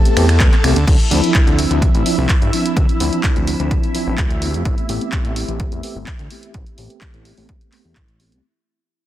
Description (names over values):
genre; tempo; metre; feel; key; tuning
filtered disco house; 127 BPM; 4/4; straight; A minor; A4 = 440 Hz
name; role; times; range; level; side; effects
mellow tine electric piano; accompaniment; 0.0-8.4 s; F3 to B4; -21 LUFS; equal; medium stereo tremolo, phaser, sidechain pumping, low-pass filter
string machine, full ensemble; sustained chords; 0.0-8.4 s; E4 to A5; -27 LUFS; equal; ensemble chorus, sidechain pumping, low-pass filter
punchy analog drum machine; drums; 0.1-8.4 s; crash cymbal, finger snaps, handclaps, hi-hat, ride cymbal; -23 LUFS; equal; sidechain pumping on hats, small room ambience, sidechain pumping on cymbals
fat analog bass; bass; 0.2-8.4 s; G1 to G2; -18 LUFS; equal; sidechain pumping, low-pass filter
electronic kick drum; drums; 0.4-8.1 s; none; -16 LUFS; equal; small room ambience
room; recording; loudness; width
digital ambience; dense, heavily limited modern master; -14 LUFS; side -13 dB against mid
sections
0.9-8.4 A section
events
fade-out 0.9-8.4; filter sweep on analog synth bass 0.9-8.4; filter sweep 0.9-8.4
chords
0.0 Am9; 0.9 Dm9; 4.7 Am9